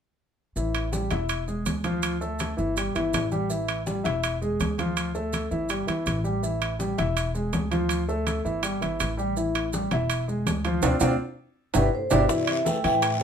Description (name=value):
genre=Afro-Cuban jazz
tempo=164 BPM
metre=4/4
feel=straight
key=unclear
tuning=A4 = 440 Hz
part: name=warm concert grand piano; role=accompaniment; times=0.6-13.1 s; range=E3 to E5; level=-27 LUFS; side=equal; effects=none
part: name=upright bass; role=bass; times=0.6-13.2 s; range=E1 to A2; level=-30 LUFS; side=equal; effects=none
part: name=congas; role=percussion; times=0.6-13.2 s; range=none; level=-32 LUFS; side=left 2 dB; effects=none
part: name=maracas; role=percussion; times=0.6-13.2 s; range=none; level=-38 LUFS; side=right 4 dB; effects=none
part: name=timbales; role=percussion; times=0.7-13.2 s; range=none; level=-30 LUFS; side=right 7 dB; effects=none
part: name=vibraphone with medium mallets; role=melody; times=11.8-13.2 s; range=B4 to G5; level=-26 LUFS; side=right 2 dB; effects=none
part: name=breathy trombone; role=second line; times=11.8-13.2 s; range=G2 to E3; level=-32 LUFS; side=left 5 dB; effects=none
part: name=bongos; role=percussion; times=12.3-13.2 s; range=none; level=-34 LUFS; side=left 7 dB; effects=none
part: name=guiro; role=percussion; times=12.3-13.2 s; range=none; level=-37 LUFS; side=left 5 dB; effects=none
room=moderate studio reverb, RT60 0.6 s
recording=minimal, uncompressed stereo recording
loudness=-24 LUFS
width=side -7 dB against mid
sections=0.6-12.3 A section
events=drum fill 10.8-12.3; band accent 10.8-12.3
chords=0.6 A5; 1.3 E7; 2.0 Dm; 2.8 Gsus2; 3.5 A5; 4.2 E7; 5.0 Dm; 5.7 Gsus2; 6.4 A5; 7.2 E7; 7.9 Dm; 8.6 Gsus2; 9.4 A5; 10.1 E7; 10.8 Dm7; 11.6 G5; 12.3 A7(no3)